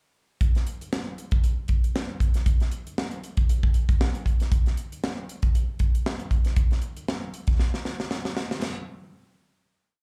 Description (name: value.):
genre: funk.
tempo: 117 BPM.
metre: 4/4.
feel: swing 56% on 16ths.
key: none.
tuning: none.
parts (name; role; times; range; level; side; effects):
crisp fusion drum kit; drums; 0.4-8.8 s; crash cymbal, hi-hat, kick drum, snare drum; -26 LUFS; equal; none.
room: little or no reverb.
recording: live gig heard through the venue's PA, club reverb.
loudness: -26 LUFS.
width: mono.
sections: 0.4-8.6 bridge; 8.6-10.0 final hit.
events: drum fill 7.6-8.6.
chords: none.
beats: | 0.41 0.92 1.44 1.95 | 2.46 2.98 3.49 4.00 | 4.52 5.03 5.54 6.06 | 6.57 7.08 7.60 8.11 | 8.63.